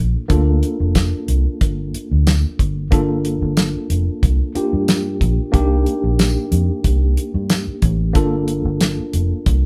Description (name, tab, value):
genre	straight-eighth soul blues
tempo	92 BPM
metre	4/4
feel	swing 54% on 16ths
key	G minor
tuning	A4 = 440 Hz
part	tine electric piano	accompaniment	0.0-9.7 s	Bb3 to A4	-25 LUFS	equal	overdrive
part	vintage muted fingered electric bass	bass	0.0-9.6 s	F1 to G2	-20 LUFS	equal	none
part	damped 70s drum kit	drums	0.3-9.6 s	hi-hat, kick drum, snare drum, tambourine	-19 LUFS	equal	none
room	light reverb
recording	band playing live in one room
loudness	-18 LUFS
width	mono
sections	0.0-2.9 A section; 2.9-9.7 B section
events	none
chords	0.0 Gm9; 5.5 Cm9; 8.2 Gm9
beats	| 0.30 0.95 1.61 2.26 | 2.92 3.57 4.23 4.88 | 5.54 6.19 6.84 7.50 | 8.15 8.81 9.46